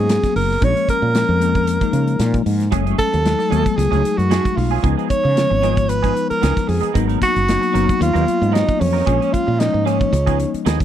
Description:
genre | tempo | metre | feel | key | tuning
electric jazz fusion | 114 BPM | 4/4 | swing 54% on 16ths | Db mixolydian | A4 = 439 Hz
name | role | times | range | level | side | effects
warm tenor saxophone | melody | 0.0-10.6 s | Db4 to Db5 | -20 LUFS | right 2 dB | none
bell-like tine electric piano | accompaniment | 0.0-10.8 s | F3 to F4 | -22 LUFS | left 10 dB | phaser
woody fretless electric bass | bass | 0.0-10.8 s | Gb1 to Db3 | -19 LUFS | right 1 dB | none
modern studio drum kit | drums | 0.1-10.8 s | hi-hat, kick drum, snare drum | -22 LUFS | right 1 dB | none
clean electric guitar | stabs | 2.7-10.8 s | F3 to Bb4 | -26 LUFS | right 17 dB | ensemble chorus
room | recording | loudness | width
studio ambience | dry, close 1970s-style studio recording | -15 LUFS | side -10 dB against mid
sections
0.0-10.8 A section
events
none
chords
0.0 Abm9; 0.6 Bbm7; 2.7 Gbmadd9; 4.8 Db9; 7.0 Abm9; 9.1 Bbm7; 10.1 Db9

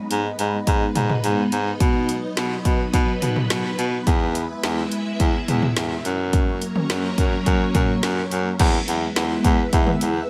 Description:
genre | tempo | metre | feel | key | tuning
synth-pop | 106 BPM | 4/4 | straight | unclear | A4 = 439 Hz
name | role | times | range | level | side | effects
phased string machine | sustained chords | 0.0-10.3 s | F#3 to E5 | -28 LUFS | equal | ensemble chorus, phaser
warm baritone saxophone | bass | 0.1-10.2 s | E2 to B2 | -25 LUFS | equal | none
deep house drum kit | drums | 0.1-10.1 s | crash cymbal, hi-hat, kick drum, snare drum, toms | -24 LUFS | equal | none
room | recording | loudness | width
light reverb | none | -21 LUFS | mono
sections
0.0-8.6 A section; 8.6-10.3 B section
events
none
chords
0.0 G#m; 1.8 B; 4.1 E; 6.0 F#; 8.6 E

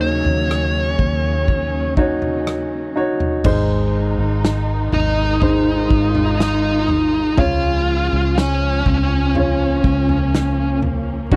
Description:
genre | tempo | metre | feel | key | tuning
pop ballad | 61 BPM | 4/4 | straight | Db major | A4 = 436 Hz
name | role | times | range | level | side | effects
dark smooth lead guitar | melody | 0.0-10.8 s | Db4 to F5 | -22 LUFS | equal | overdrive
warm baby grand piano | accompaniment | 0.0-11.4 s | Ab2 to Db5 | -25 LUFS | equal | none
warm studio string section | sustained chords | 0.0-11.4 s | Db3 to F4 | -30 LUFS | equal | none
vintage muted fingered electric bass | bass | 0.0-11.4 s | Ab1 to Eb2 | -23 LUFS | equal | none
natural country drum kit | drums | 0.2-11.4 s | crash cymbal, kick drum, rim click, snare drum, toms | -24 LUFS | equal | none
room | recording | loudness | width
small room ambience | dry, close 1970s-style studio recording | -18 LUFS | mono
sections
0.0-3.5 A section; 3.5-11.4 B section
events
none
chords
0.0 Ebm7; 3.5 Ab; 7.4 Db

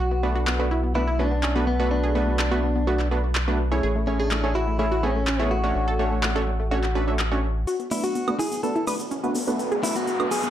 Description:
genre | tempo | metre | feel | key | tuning
progressive house | 125 BPM | 4/4 | straight | B dorian | A4 = 440 Hz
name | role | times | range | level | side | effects
direct-recorded clean electric guitar | melody | 0.0-10.5 s | B3 to B4 | -28 LUFS | left 1 dB | tape echo
analog pluck | arpeggios | 0.0-10.5 s | A3 to A4 | -29 LUFS | left 1 dB | chorus, tape echo
round analog bass | bass | 0.0-10.5 s | F#1 to B1 | -26 LUFS | equal | high-pass filter
supersaw stab | stabs | 0.2-10.3 s | A3 to E5 | -27 LUFS | right 2 dB | low-pass filter, tape echo
big-room dance drum kit | drums | 0.5-10.5 s | handclaps, hi-hat, woodblock | -30 LUFS | equal | none
tube shaker | percussion | 7.7-10.5 s | none | -36 LUFS | right 1 dB | none
riser | sound effects | 8.3-10.5 s | none | -33 LUFS | left 1 dB | none
room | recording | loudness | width
light reverb | dark, warm production | -21 LUFS | side -11 dB against mid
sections
0.0-7.7 A section; 7.7-10.5 B section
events
filter sweep on synth arpeggio sound 0.0-7.7; build-up 7.7-10.5; riser 8.3-10.5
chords
0.0 Bm7; 3.8 Amaj7; 5.8 Dmaj7/A; 7.7 Bm7

